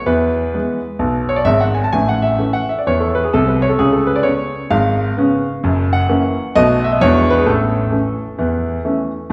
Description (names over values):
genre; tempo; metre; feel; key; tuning
jazz, stride piano; 130 BPM; 4/4; swing 64% on 8ths; A major; A4 = 439 Hz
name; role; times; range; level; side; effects
clear grand piano; solo; 0.0-9.3 s; F#1 to A5; -16 LUFS; equal; none
room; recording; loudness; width
wet recital hall reverb, RT60 1.7 s; recorded in a church or concert hall; -16 LUFS; mono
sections
0.0-9.3 A section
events
none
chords
0.1 E; 1.9 A; 3.8 C#7; 5.6 F#7; 6.5 B7; 7.0 E9; 7.5 A